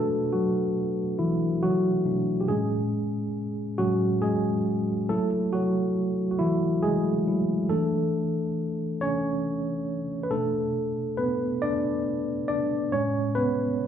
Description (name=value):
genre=R&B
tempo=46 BPM (dotted quarters)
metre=6/8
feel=straight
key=B dorian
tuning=A4 = 441 Hz
part: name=barky tine electric piano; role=solo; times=0.0-13.9 s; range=A2 to D5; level=-24 LUFS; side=equal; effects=medium stereo tremolo
room=wet large studio reverb, RT60 1.2 s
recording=band playing live in one room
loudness=-24 LUFS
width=side -9 dB against mid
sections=0.0-13.9 A section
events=tine electric piano solo 0.0-13.9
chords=0.0 Bm7; 2.5 Amaj7; 5.1 F#m9; 7.7 E7sus4; 10.3 Bm7; 12.9 Amaj9